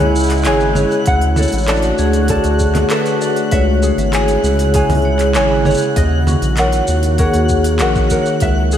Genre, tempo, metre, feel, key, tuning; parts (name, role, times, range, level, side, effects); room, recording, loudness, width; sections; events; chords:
folktronica; 98 BPM; 4/4; straight; A4 = 439 Hz
vibraphone with medium hard mallets; second line; 0.0-8.8 s; G#4 to C#5; -19 LUFS; equal; ping-pong delay
warbly tape-like pad; sustained chords; 0.0-8.8 s; C#3 to F#4; -19 LUFS; left 1 dB; chorus, built-in reverb
ukulele; arpeggios; 0.0-8.8 s; F#4 to A5; -21 LUFS; equal; vintage 12-bit sampler grit, ping-pong delay
round analog bass; bass; 0.0-8.8 s; G#1 to D#2; -16 LUFS; equal
organic electronic drum kit; drums; 0.0-8.8 s; congas, handclaps, hi-hat, shaker; -23 LUFS; right 1 dB; studio reverb
twinkling granular texture; texture; 0.0-8.8 s; F#5 to F#6; -26 LUFS; right 2 dB; built-in reverb
electronic kick drum; drums; 1.1-8.5 s; -19 LUFS; equal; studio reverb
moderate lush hall reverb, RT60 2.7 s; dreamy mix soaked in reverb, vinyl crackle; -12 LUFS; side -10 dB against mid
0.0-8.8 A section
break 2.9-3.5
0.0 C#m; 1.1 D; 3.5 C#m; 6.0 D#m